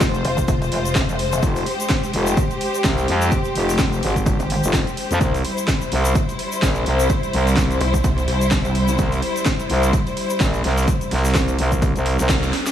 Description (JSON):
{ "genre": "bass house", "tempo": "127 BPM", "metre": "4/4", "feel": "swing 57% on 16ths", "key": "F harmonic minor", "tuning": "A4 = 440 Hz", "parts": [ { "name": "rich studio string section", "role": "sustained chords", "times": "0.0-12.7 s", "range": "G3 to C5", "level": "-24 LUFS", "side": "left 1 dB", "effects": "sidechain pumping" }, { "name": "growling FM bass", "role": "bass", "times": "0.0-12.5 s", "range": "F1 to F2", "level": "-20 LUFS", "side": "equal", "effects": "overdrive, sidechain pumping" }, { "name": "dusty soul sampler-style drum kit", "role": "drums", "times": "0.0-12.7 s", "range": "hi-hat, snare drum", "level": "-37 LUFS", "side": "right 2 dB", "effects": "none" }, { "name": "electronic kick drum", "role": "drums", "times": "0.0-12.4 s", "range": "none", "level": "-21 LUFS", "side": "equal", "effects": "overdrive" }, { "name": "garage drum kit", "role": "drums", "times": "0.0-12.7 s", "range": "hi-hat, snare drum", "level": "-26 LUFS", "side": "right 1 dB", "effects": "overdrive" }, { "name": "egg shaker", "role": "percussion", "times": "0.0-12.7 s", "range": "none", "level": "-33 LUFS", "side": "left 5 dB", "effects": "none" }, { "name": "pulsing pluck wobble bass", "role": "bass", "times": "0.2-1.4, 4.4-4.6, 7.8-9.0 s", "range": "F1 to C2", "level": "-21 LUFS", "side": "equal", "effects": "chorus, sidechain pumping" } ], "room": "light reverb", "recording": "studio reverb", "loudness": "-17 LUFS", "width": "side -10 dB against mid", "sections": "0.0-12.7 A section", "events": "band accent 12.3; drum fill 12.5", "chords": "0.0 Fm; 5.2 C" }